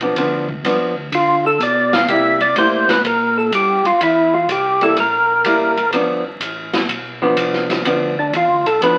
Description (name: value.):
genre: soul jazz organ trio.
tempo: 125 BPM.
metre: 4/4.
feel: swing 68% on 8ths.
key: G mixolydian.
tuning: A4 = 439 Hz.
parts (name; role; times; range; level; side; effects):
archtop guitar, miked and amplified; accompaniment; 0.0-9.0 s; F3 to E4; -20 LUFS; equal; none.
mellow tonewheel organ; bass; 0.0-9.0 s; G1 to D3; -30 LUFS; equal; overdrive, chorus vibrato, slow rotary speaker.
open jazz drum kit; drums; 0.0-9.0 s; hi-hat, kick drum, ride cymbal, snare drum; -25 LUFS; equal; none.
percussive tonewheel organ; melody; 1.1-9.0 s; D4 to F5; -16 LUFS; equal; slow rotary speaker, overdrive.
room: moderate club reverb, RT60 0.6 s.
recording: very old 78 rpm record, vinyl crackle.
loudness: -16 LUFS.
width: mono.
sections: 0.0-9.0 A section.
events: tonewheel organ solo 0.0-9.0.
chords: 0.0 G7; 2.1 C7; 5.9 G7.